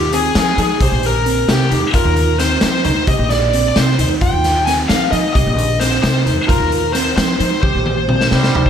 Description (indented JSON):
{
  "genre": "progressive instrumental, band music in an uneven meter",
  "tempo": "264 BPM (eighths)",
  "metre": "5/8",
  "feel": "straight",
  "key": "C minor",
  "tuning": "A4 = 440 Hz",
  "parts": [
    { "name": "bluesy overdriven lead guitar", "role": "melody", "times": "0.0-8.7 s", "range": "G4 to Ab5", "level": "-17 LUFS", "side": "left 1 dB", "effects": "distortion, ping-pong delay" },
    { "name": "bell-like tine electric piano", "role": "arpeggios", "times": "0.0-8.7 s", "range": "C4 to G4", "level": "-21 LUFS", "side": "right 3 dB", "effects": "medium stereo tremolo, slapback echo" },
    { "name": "upright bass", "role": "bass", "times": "0.0-8.6 s", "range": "Bb1 to F3", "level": "-18 LUFS", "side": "equal", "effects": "none" },
    { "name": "raw garage drum kit", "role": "drums", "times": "0.1-8.7 s", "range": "hi-hat, kick drum, snare drum, toms", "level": "-18 LUFS", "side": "equal", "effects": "none" },
    { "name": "trombone with straight mute", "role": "second line", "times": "8.3-8.7 s", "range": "G3", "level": "-22 LUFS", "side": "right 4 dB", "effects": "none" }
  ],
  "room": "light reverb, small room ambience",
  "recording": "none",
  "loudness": "-13 LUFS",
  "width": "side -8 dB against mid",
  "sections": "0.0-8.7 A section",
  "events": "drum fill 7.6-8.7",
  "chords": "0.0 F5; 0.8 Cm7; 1.9 F5; 3.1 Cm7; 4.2 F5; 5.4 Cm7; 6.5 F5; 7.6 Cm7"
}